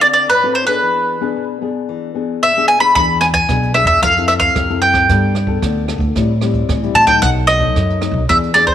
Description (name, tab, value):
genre	samba and choro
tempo	112 BPM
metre	4/4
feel	straight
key	unclear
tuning	A4 = 442 Hz
part	bowl-back mandolin	melody	0.0-8.7 s	B4 to B5	-12 LUFS	equal	none
part	nylon-string guitar	accompaniment	0.0-8.7 s	F#2 to A4	-22 LUFS	left 10 dB	none
part	upright bass	bass	3.0-8.7 s	B1 to A2	-18 LUFS	right 1 dB	none
part	jazz brush drum kit	drums	3.0-8.7 s	hi-hat, kick drum, rim click	-22 LUFS	right 3 dB	none
room	light reverb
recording	1960s-style stereo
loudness	-12 LUFS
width	side -10 dB against mid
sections	0.0-8.7 A section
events	none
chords	0.0 Dm7; 0.8 E7; 4.0 Fmaj7; 5.1 G9; 6.2 Am7; 7.2 B7